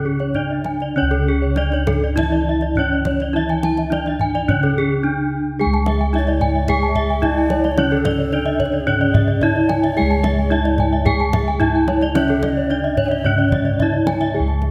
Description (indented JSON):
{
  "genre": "Balinese gamelan",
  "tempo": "98-110 BPM",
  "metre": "4/4",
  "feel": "straight",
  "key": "C# pelog",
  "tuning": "A4 = 445 Hz",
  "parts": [
    { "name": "gamelan-type bronze metallophone", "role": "melody", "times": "0.0-14.7 s", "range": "C#4 to G#4-45c", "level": "-23 LUFS", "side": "equal", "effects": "none" },
    { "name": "gamelan-type bronze metallophone", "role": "accompaniment", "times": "0.0-14.7 s", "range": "C#3 to G#3-45c", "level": "-28 LUFS", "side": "equal", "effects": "none" },
    { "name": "gamelan-type bronze metallophone", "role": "arpeggios", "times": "0.0-14.6 s", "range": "A4-40c to A5-40c", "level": "-27 LUFS", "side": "equal", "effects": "none" },
    { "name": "gamelan-type bossed gongs", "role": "bass", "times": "0.0-14.7 s", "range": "C#2 to G#4-45c", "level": "-24 LUFS", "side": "equal", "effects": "none" },
    { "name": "gamelan-type bronze metallophone", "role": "arpeggios", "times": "0.1-14.7 s", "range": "G#4-45c to A5-40c", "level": "-29 LUFS", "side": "equal", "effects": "none" },
    { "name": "kendang", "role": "percussion", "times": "0.2-14.7 s", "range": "none", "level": "-26 LUFS", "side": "equal", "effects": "none" },
    { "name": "breathy mellow tenor recorder", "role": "second line", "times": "6.2-14.4 s", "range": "G#4-47c to G5+49c", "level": "-30 LUFS", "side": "equal", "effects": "none" }
  ],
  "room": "moderate scoring stage reverb, RT60 1.5 s",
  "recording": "none",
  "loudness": "-18 LUFS",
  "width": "mono",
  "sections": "0.0-5.6 A section; 5.6-14.7 B section",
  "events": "none",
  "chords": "none"
}